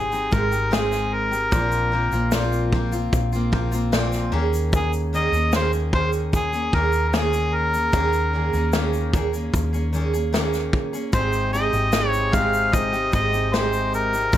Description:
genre	acoustic pop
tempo	75 BPM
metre	4/4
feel	straight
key	Ab major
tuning	A4 = 440 Hz
part	mellow harmonica	melody	0.0-14.4 s	Ab4 to F5	-23 LUFS	left 1 dB	plate reverb, digital delay
part	picked steel-string acoustic guitar	accompaniment	0.0-14.4 s	Bb2 to Ab4	-25 LUFS	right 1 dB	none
part	hollow-body short-scale fingered electric bass	bass	0.0-14.4 s	Ab1 to Eb2	-25 LUFS	equal	none
part	natural country drum kit	drums	0.1-14.4 s	kick drum, shaker, snare drum	-24 LUFS	left 1 dB	none
part	pedal harmonium	sustained chords	11.1-14.4 s	C3 to G4	-31 LUFS	left 3 dB	plate reverb
room	light reverb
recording	none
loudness	-19 LUFS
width	side -12 dB against mid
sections	0.0-14.4 A section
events	none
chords	0.0 Abmaj7; 1.5 Bbsus2; 4.3 Eb7sus4; 11.1 Abmaj7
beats	0.73 | 1.53 2.33 3.13 3.93 | 4.73 5.53 6.33 7.13 | 7.93 8.73 9.53 10.33 | 11.13 11.93 12.73 13.53 | 14.33

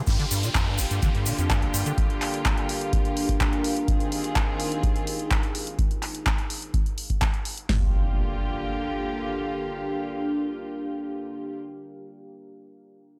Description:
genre	acid house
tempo	126 BPM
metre	4/4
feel	straight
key	G phrygian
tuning	A4 = 440 Hz
part	warm studio string section	sustained chords	0.0-11.5 s	D3 to Ab4	-35 LUFS	equal	sidechain pumping
part	deep acid bass	riff	0.0-1.9 s	G1 to D3	-29 LUFS	equal	overdrive, analog chorus
part	booming analog drum machine	drums	0.1-7.8 s	hi-hat, kick drum, snare drum	-27 LUFS	equal	small room ambience
part	punchy analog drum machine	drums	0.1-7.7 s	handclaps, hi-hat	-33 LUFS	equal	overdrive, small room ambience
part	egg shaker	percussion	0.1-2.0 s	none	-35 LUFS	equal	none
part	downlifter and impact	sound effects	0.1-3.9, 7.7-11.6 s	none	-38 LUFS	equal	none
part	deep dark ambient pad	texture	1.3-11.7 s	D4 to F5	-34 LUFS	equal	chorus, built-in reverb, sidechain pumping
room	light reverb, digital ambience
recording	none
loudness	-26 LUFS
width	mono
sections	0.1-7.7 A section; 7.7-11.5 B section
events	none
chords	0.1 Gm7; 3.9 Fm7; 7.7 Gm7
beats	| 0.07 0.55 1.02 1.50 | 1.98 2.45 2.93 3.41 | 3.88 4.36 4.83 5.31 | 5.79 6.26 6.74 7.21 | 7.69 8.17 8.64 9.12 | 9.60 10.07 10.55 11.03

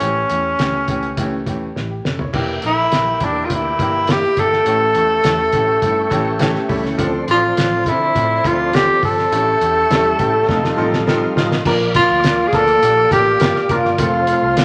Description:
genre	uptempo 1960s-style soul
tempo	103 BPM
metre	4/4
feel	straight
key	unclear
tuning	A4 = 440 Hz
part	breathy tenor saxophone	melody	0.0-14.6 s	C#4 to A4	-18 LUFS	equal	none
part	clear grand piano	accompaniment	0.0-14.6 s	E3 to C6	-25 LUFS	equal	none
part	vintage muted picked electric bass	bass	0.0-14.6 s	E1 to D3	-29 LUFS	equal	none
part	cloth-damped thuddy drum kit	drums	0.0-14.6 s	crash cymbal, hi-hat, kick drum, snare drum, toms	-24 LUFS	equal	none
part	tonewheel organ	sustained chords	2.3-14.6 s	Bb3 to D6	-29 LUFS	equal	slow rotary speaker, chorus vibrato
part	mellow electric guitar	riff	6.4-11.5 s	E3 to A4	-27 LUFS	equal	none
part	vibraphone with soft mallets	second line	11.9-14.6 s	F5 to A5	-26 LUFS	equal	none
room	wet large studio reverb, RT60 1.2 s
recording	none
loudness	-16 LUFS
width	mono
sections	0.0-2.3 A section; 2.3-11.7 B section; 11.7-14.6 C section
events	drum fill 1.8-2.3, 10.5-11.7; grand piano fill 6.1-7.0, 10.5-11.7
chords	0.0 A7; 2.3 Em7b5; 4.7 A7; 7.0 Dm7; 9.3 A7; 10.5 F7; 11.7 Bb; 14.0 F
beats	| 0.01 0.59 1.17 1.76 | 2.34 2.92 3.50 4.08 | 4.67 5.25 5.83 6.41 | 6.99 7.58 8.16 8.74 | 9.32 9.90 10.49 11.07 | 11.65 12.23 12.82 13.40 | 13.98 14.57

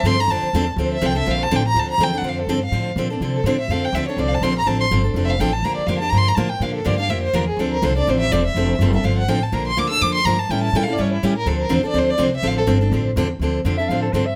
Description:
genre	acoustic string swing (jazz manouche)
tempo	247 BPM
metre	4/4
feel	swing 54% on 8ths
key	D minor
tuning	A4 = 443 Hz
part	warm violin	melody	0.0-12.6 s	E4 to E6	-24 LUFS	equal	plate reverb
part	picked steel-string acoustic guitar	accompaniment	0.0-14.2 s	D3 to A4	-24 LUFS	equal	none
part	upright bass	bass	0.0-14.4 s	E1 to C3	-24 LUFS	equal	none
part	breathy soprano saxophone	second line	13.8-14.4 s	A4 to F5	-25 LUFS	equal	none
room	moderate studio reverb, RT60 0.8 s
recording	none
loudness	-20 LUFS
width	mono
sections	0.0-1.8 A section; 1.8-13.4 A section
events	violin solo 0.0-13.4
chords	0.0 Dm7; 5.6 Gm7; 7.6 Dm7; 9.5 Bbmaj7; 10.5 A7b9; 11.5 Dm7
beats	0.05 0.29 0.54 | 0.78 1.02 1.27 1.51 | 1.75 2.00 2.24 2.48 | 2.73 2.97 3.21 3.46 | 3.70 3.94 4.18 4.43 | 4.67 4.91 5.16 5.40 | 5.64 5.88 6.13 6.37 | 6.61 6.86 7.10 7.34 | 7.58 7.83 8.07 8.31 | 8.56 8.80 9.04 9.28 | 9.53 9.77 10.01 10.26 | 10.50 10.74 10.98 11.23 | 11.47 11.71 11.95 12.20 | 12.44 12.68 12.93 13.17 | 13.41 13.65 13.90 14.14

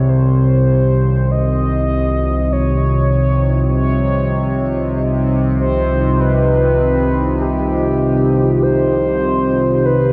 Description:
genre	dark ambient drone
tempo	free time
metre	none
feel	none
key	unclear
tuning	A4 = 440 Hz
part	mellow horn-like synth lead	melody	0.0-10.1 s	G4 to Eb5	-22 LUFS	equal	chorus, shimmer reverb, delay
part	deep dark ambient pad	sustained chords	1.3-10.1 s	Eb4 to Eb5	-24 LUFS	equal	chorus, built-in reverb, shimmer reverb
part	analog drone	drone	0.0-10.1 s	C2 to C3	-17 LUFS	equal	chorus
room	wet cathedral reverb, RT60 5.3 s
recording	none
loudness	-15 LUFS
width	mono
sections	0.0-10.1 A section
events	none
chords	0.0 Cm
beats	free time

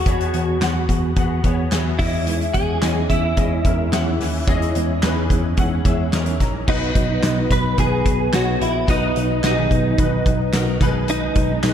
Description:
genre	piano-driven pop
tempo	109 BPM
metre	4/4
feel	straight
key	B major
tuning	A4 = 440 Hz
part	direct-recorded clean electric guitar	melody	0.0-11.7 s	D#4 to B4	-23 LUFS	equal	ensemble chorus, ping-pong delay
part	clear concert grand piano	accompaniment	0.0-11.7 s	B2 to A#5	-26 LUFS	left 3 dB	ensemble chorus
part	bell-like tine electric piano	bass	0.1-11.7 s	A#1 to E2	-22 LUFS	equal	medium stereo tremolo
part	loose indie drum kit	drums	0.1-11.7 s	crash cymbal, handclaps, hi-hat, kick drum, snare drum	-21 LUFS	equal	none
part	fingerpicked steel-string acoustic guitar	riff	2.3-11.7 s	B2 to B4	-28 LUFS	right 8 dB	none
part	dark French horn section	second line	6.7-11.7 s	B2 to D#4	-30 LUFS	left 3 dB	none
room	moderate lush hall reverb, RT60 2.5 s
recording	dreamy mix soaked in reverb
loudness	-17 LUFS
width	side -9 dB against mid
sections	0.0-6.7 A section; 6.7-11.7 B section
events	grand piano fill 5.9-6.7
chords	0.0 Eadd9; 2.0 C#madd9; 6.7 B; 10.8 G#m/B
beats	| 0.06 0.61 1.17 1.72 | 2.27 2.82 3.37 3.92 | 4.47 5.02 5.58 6.13 | 6.68 7.23 7.78 8.33 | 8.88 9.43 9.98 10.53 | 11.09 11.64

